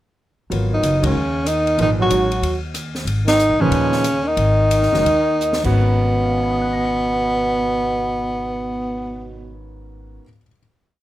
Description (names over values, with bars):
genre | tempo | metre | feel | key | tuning
modal jazz | 160-188 BPM | 4/4 | swing 64% on 8ths | G# dorian | A4 = 439 Hz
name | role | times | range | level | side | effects
warm concert grand piano | accompaniment | 0.5-10.6 s | G#2 to C#7 | -24 LUFS | right 1 dB | none
upright bass | bass | 0.5-10.2 s | F#1 to D#2 | -23 LUFS | equal | none
open jazz drum kit | drums | 0.5-5.7 s | crash cymbal, hi-hat, kick drum, ride cymbal, rim click, snare drum | -28 LUFS | left 1 dB | none
breathy tenor saxophone | melody | 0.7-9.5 s | B3 to F#4 | -18 LUFS | equal | none
clear trombone | second line | 0.7-9.5 s | B2 to F#3 | -26 LUFS | right 4 dB | none
room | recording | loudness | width
light reverb | close, detailed microphones | -16 LUFS | side -14 dB against mid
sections
0.5-5.8 A section; 5.8-8.8 final chord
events
band accent 1.0, 3.2; slowing down 3.1-5.8; drum fill 5.4-5.8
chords
0.5 G#m11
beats
| 0.51 0.83 1.15 1.47 | 1.78 2.10 2.42 2.74 | 3.06 3.38 3.71 4.03 | 4.37 4.71 5.05 5.41 | 5.78 6.16 6.53 6.91 | 7.28 7.65 8.03 8.40